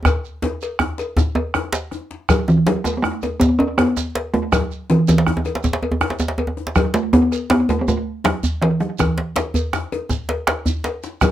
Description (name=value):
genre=west african traditional, West African drum ensemble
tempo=108 BPM (dotted quarters)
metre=12/8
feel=straight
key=A major pentatonic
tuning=A4 = 439 Hz
part: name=bombo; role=percussion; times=0.1-11.3 s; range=none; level=-21 LUFS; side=equal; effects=none
part: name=cowbell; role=percussion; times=0.1-11.3 s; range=none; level=-27 LUFS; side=left 5 dB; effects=none
part: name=djembe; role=percussion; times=0.1-11.3 s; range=none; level=-28 LUFS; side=left 5 dB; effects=none
part: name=djembe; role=percussion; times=0.1-11.3 s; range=none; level=-22 LUFS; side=right 1 dB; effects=none
part: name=shekere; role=percussion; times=0.1-11.3 s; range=none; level=-31 LUFS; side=right 6 dB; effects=none
part: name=talking drum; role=melody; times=2.3-11.3 s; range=E3 to C#4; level=-17 LUFS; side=right 1 dB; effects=slapback echo
room=light reverb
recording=none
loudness=-17 LUFS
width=side -12 dB against mid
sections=0.0-2.3 A section; 2.3-11.3 B section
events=drum fill 0.1-2.3, 10.5-11.2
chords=none